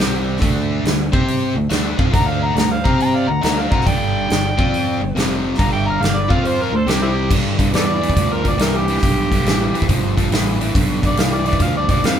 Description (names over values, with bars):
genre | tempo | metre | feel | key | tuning
blues rock power trio and southern rock | 139 BPM | 4/4 | swing 66% on 8ths | unclear | A4 = 440 Hz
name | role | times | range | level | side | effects
crunchy overdriven guitar | riff | 0.0-12.2 s | F2 to C5 | -21 LUFS | equal | none
growling fingered electric bass | bass | 0.0-12.2 s | F1 to C3 | -22 LUFS | equal | overdrive
big rock drum kit | drums | 0.0-12.2 s | crash cymbal, hi-hat, kick drum, snare drum | -19 LUFS | equal | none
dark smooth lead guitar | second line | 2.1-7.3 s | C4 to G5 | -30 LUFS | right 3 dB | overdrive, tape echo
overdriven harmonica | melody | 2.2-12.2 s | C4 to Bb5 | -21 LUFS | left 1 dB | none
room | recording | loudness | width
light reverb | band playing live in one room | -15 LUFS | side -9 dB against mid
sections
0.0-7.3 A section; 7.3-12.2 B section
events
harmonica solo 7.3-12.2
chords
0.0 C5; 0.4 D5; 1.1 C5; 1.5 D5; 2.8 C5; 3.2 D5; 3.9 G5; 4.5 F5; 4.9 G5; 5.2 F5; 5.6 G5; 6.2 F5; 6.7 D5; 6.9 C5; 7.3 G7